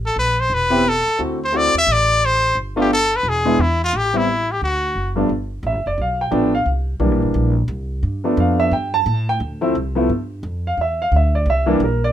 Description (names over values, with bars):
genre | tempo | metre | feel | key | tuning
jazz, small-group swing and bop | 175 BPM | 4/4 | swing 62% on 8ths | G mixolydian | A4 = 443 Hz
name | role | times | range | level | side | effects
upright bass | bass | 0.0-12.1 s | E1 to A2 | -21 LUFS | equal | none
brilliant trumpet | melody | 0.1-5.1 s | E4 to E5 | -17 LUFS | left 1 dB | none
warm grand piano | accompaniment | 0.7-12.1 s | G2 to A5 | -19 LUFS | equal | none
room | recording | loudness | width
light reverb | minimal, uncompressed stereo recording | -16 LUFS | side -11 dB against mid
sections
0.0-5.3 A section; 5.3-12.1 B section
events
none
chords
0.0 A5; 1.2 D9; 2.6 G9; 3.2 E7; 3.9 Am7; 4.6 D; 5.3 G9; 6.7 C9; 8.0 G9; 9.4 Dm7; 10.1 Fsus2; 10.8 C9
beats
0.16 0.50 0.84 | 1.18 1.53 1.87 2.21 | 2.56 2.90 3.24 3.58 | 3.92 4.27 4.61 4.95 | 5.29 5.64 5.98 6.32 | 6.67 7.01 7.35 7.69 | 8.04 8.38 8.72 9.06 | 9.41 9.75 10.09 10.44 | 10.78 11.12 11.46 11.80